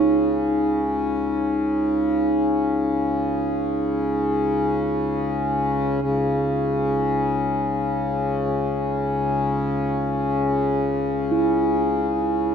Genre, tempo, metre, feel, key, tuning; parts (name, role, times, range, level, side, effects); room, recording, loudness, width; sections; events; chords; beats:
world meditative, free-time meditation music; free time; C# minor; A4 = 440 Hz
hand-pumped harmonium; drone; 0.0-12.5 s; C#2 to C#3; -21 LUFS; left 2 dB; stereo widening
bronze singing bowl; texture; 0.0-12.5 s; D#4 to E4; -25 LUFS; right 3 dB
wet huge ambient reverb, RT60 3.9 s; -20 LUFS; side -7 dB against mid
0.0-12.5 A section
free time